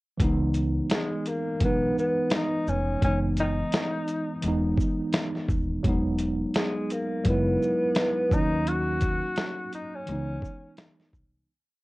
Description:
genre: lo-fi hip hop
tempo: 85 BPM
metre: 4/4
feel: swing 59% on 16ths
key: C# dorian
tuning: A4 = 439 Hz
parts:
  - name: mellow tine electric piano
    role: accompaniment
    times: 0.2-11.5 s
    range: E3 to E4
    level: -28 LUFS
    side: right 1 dB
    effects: medium stereo tremolo, low-pass filter
  - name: upright bass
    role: bass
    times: 0.2-11.4 s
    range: D#1 to D#2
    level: -29 LUFS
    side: equal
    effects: none
  - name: lo-fi sampler-style drum kit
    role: drums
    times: 0.2-11.3 s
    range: hi-hat, kick drum, shaker, snare drum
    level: -27 LUFS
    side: equal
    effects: none
  - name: breathy tenor saxophone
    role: melody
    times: 0.9-10.8 s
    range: G#3 to F#4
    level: -28 LUFS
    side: equal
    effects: low-pass filter, plate reverb
room: moderate studio ambience, RT60 0.5 s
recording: worn, warbling old tape, cassette tape, warbly pitch drift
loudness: -24 LUFS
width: side -20 dB against mid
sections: 0.2-11.5 A section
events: fade-out 8.7-11.5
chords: 0.2 C#m9; 3.0 F#13sus4; 5.8 Emaj9; 8.3 D#m7; 10.1 C#m9

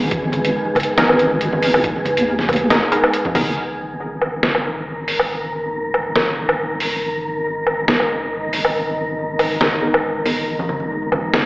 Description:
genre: deep dubstep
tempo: 139 BPM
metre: 4/4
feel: swing 54% on 16ths, half-time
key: G# minor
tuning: A4 = 440 Hz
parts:
  - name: deep dark ambient pad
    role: sustained chords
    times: 0.0-11.5 s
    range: G#3 to D#5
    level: -25 LUFS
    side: right 1 dB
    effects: chorus, built-in reverb
  - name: deep soft wobble bass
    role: bass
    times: 0.0-11.5 s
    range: F#1 to D#2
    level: -26 LUFS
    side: equal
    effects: chorus, tube saturation
  - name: wind-like tuned noise texture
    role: texture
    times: 0.0-11.5 s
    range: G#4 to A#4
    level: -24 LUFS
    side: equal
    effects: built-in reverb
  - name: electronic kick drum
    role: drums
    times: 0.1-3.4 s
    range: none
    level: -29 LUFS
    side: equal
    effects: small room reverb
  - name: trip hop sampler-style drum kit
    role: drums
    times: 0.1-11.4 s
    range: hi-hat, snare drum, woodblock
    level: -19 LUFS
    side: equal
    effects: low-pass filter on hats, small room reverb, low-pass filter on perc, low-pass filter on snare
  - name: congas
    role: percussion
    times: 0.2-3.3, 10.6-11.2 s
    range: none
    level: -28 LUFS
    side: equal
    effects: dub echo
  - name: filtered dub chord stab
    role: stabs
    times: 1.0-11.5 s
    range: B3 to A#4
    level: -22 LUFS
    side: equal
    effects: chorus, dub echo
room: wet spring reverb, RT60 2.0 s, digital ambience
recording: played on a big sound system in a bare room, large studio reverb, AM radio sound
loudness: -16 LUFS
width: side -21 dB against mid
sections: 0.0-3.6 A section; 3.6-11.5 B section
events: filter sweep on synth stab 3.6-11.5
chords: 0.0 G#madd9

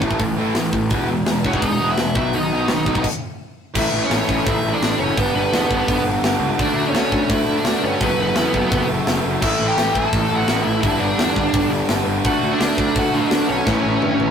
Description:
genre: punk rock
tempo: 169 BPM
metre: 4/4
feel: straight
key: A mixolydian from 3.8 s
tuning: A4 = 440 Hz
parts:
  - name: fuzz guitar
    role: riff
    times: 0.0-3.0, 9.4-14.3 s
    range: E2 to D4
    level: -31 LUFS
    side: right 1 dB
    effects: none
  - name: sludgy distorted guitar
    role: riff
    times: 0.0-14.3 s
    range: E2 to D4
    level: -26 LUFS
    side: left 5 dB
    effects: overdrive
  - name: tight distorted guitar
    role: riff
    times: 0.0-14.3 s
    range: F#2 to E4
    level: -23 LUFS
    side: right 3 dB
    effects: distortion
  - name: fuzz picked electric bass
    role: bass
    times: 0.0-14.3 s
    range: E1 to G2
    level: -23 LUFS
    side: equal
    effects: overdrive
  - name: tight metal drum kit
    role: drums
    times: 0.0-14.3 s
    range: crash cymbal, hi-hat, kick drum, snare drum, toms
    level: -23 LUFS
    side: left 1 dB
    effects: none
  - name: biting lead guitar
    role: melody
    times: 1.5-14.3 s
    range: B3 to A5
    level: -21 LUFS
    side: equal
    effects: overdrive
room: moderate booth ambience, RT60 0.2 s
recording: rough rehearsal-room recording, warm saturation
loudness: -16 LUFS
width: side -7 dB against mid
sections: 0.0-3.8 A section; 3.8-14.3 B section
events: stop 3.0-3.8; drum fill 13.7-14.3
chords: 0.0 A5; 0.9 E; 2.2 B; 3.0 N.C.; 3.8 A; 5.2 G; 6.6 D; 8.0 F#m; 9.4 A; 10.8 G; 12.3 D; 13.7 A

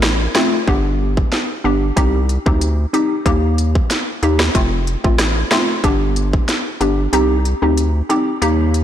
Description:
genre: dancehall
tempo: 93 BPM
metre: 4/4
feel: straight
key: C dorian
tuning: A4 = 441 Hz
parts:
  - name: hollow square pluck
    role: accompaniment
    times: 0.0-8.8 s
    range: A3 to G4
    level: -18 LUFS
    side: left 1 dB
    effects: chorus, sidechain pumping
  - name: round analog bass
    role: bass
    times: 0.0-8.8 s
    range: F1 to Eb2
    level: -18 LUFS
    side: equal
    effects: none
  - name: island pop drum kit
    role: drums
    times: 0.0-8.8 s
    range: hi-hat, kick drum, rim click, snare drum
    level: -18 LUFS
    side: equal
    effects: overdrive
room: light reverb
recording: blown-out, overdriven recording, overdrive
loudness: -14 LUFS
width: side -10 dB against mid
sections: 0.0-8.8 A section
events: kick muted 7.1-8.8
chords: 0.0 F; 0.7 G; 2.0 Cm; 3.3 Eb; 4.5 F; 5.8 G; 7.1 Cm

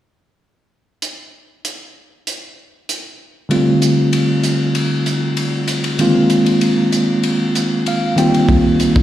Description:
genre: electric jazz fusion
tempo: 96 BPM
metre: 4/4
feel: straight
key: G minor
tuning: A4 = 440 Hz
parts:
  - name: tight funk drum kit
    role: drums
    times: 1.0-9.0 s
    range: hi-hat, kick drum, ride cymbal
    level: -21 LUFS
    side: equal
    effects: none
  - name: bell-like tine electric piano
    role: accompaniment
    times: 3.5-9.0 s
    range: D3 to G5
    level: -14 LUFS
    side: equal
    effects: fast stereo tremolo, plate reverb
room: wet club reverb, RT60 0.5 s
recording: live gig heard through the venue's PA, recital hall reverb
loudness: -14 LUFS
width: side -12 dB against mid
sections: 1.0-3.5 A section; 3.5-9.0 B section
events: tine electric piano fill 7.5-8.5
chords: 1.0 N.C.; 3.5 G9sus4; 6.0 Bb9sus4; 8.2 F9sus4

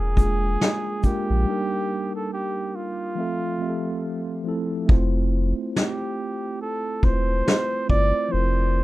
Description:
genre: lo-fi hip hop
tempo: 70 BPM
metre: 4/4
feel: swing 59% on 16ths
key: F major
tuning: A4 = 439 Hz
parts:
  - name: trumpet with bucket mute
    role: melody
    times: 0.0-8.8 s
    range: F4 to D5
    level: -27 LUFS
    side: right 2 dB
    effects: low-pass filter
  - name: mellow tine electric piano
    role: accompaniment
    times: 0.0-8.8 s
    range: F3 to E5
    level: -28 LUFS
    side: equal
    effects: medium stereo tremolo, low-pass filter
  - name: warm sub bass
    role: bass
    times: 0.0-8.8 s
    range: E1 to Bb1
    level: -22 LUFS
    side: equal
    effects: none
  - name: vintage brush drum kit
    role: drums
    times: 0.2-8.1 s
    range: hi-hat, kick drum, shaker, snare drum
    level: -19 LUFS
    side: equal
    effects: none
room: little or no reverb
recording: rough home demo mix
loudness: -21 LUFS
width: side -17 dB against mid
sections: 0.0-4.9 A section; 4.9-8.8 B section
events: break 1.5-4.9; hi-hats muted 4.9-8.8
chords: 0.0 Bb7; 1.5 Ebmaj7; 3.2 Fmaj7

